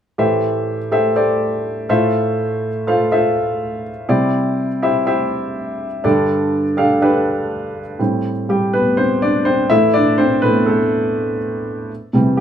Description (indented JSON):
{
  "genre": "pop",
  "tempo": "123 BPM",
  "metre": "4/4",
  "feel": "straight",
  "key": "unclear",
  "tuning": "A4 = 440 Hz",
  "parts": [
    { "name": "warm baby grand piano", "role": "accompaniment", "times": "0.2-12.4 s", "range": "G2 to F5", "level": "-15 LUFS", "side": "equal", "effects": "none" }
  ],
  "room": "wet studio reverb, RT60 0.5 s",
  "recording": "band playing live in one room",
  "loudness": "-15 LUFS",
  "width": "side -9 dB against mid",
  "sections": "0.2-8.0 A section; 8.0-12.4 B section",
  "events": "grand piano solo 8.0-12.4",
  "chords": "0.2 Am7; 1.9 Fmaj7/A; 4.1 Cadd9; 6.0 Gsus2; 8.0 Am7; 9.7 Amadd9; 11.9 C",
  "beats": "| 0.18 0.67 1.16 1.65 | 2.14 2.62 3.11 3.60 | 4.09 4.58 5.07 5.55 | 6.04 6.53 7.02 7.50 | 7.99 8.48 8.97 9.46 | 9.95 10.43 10.92 11.41 | 11.90 12.38"
}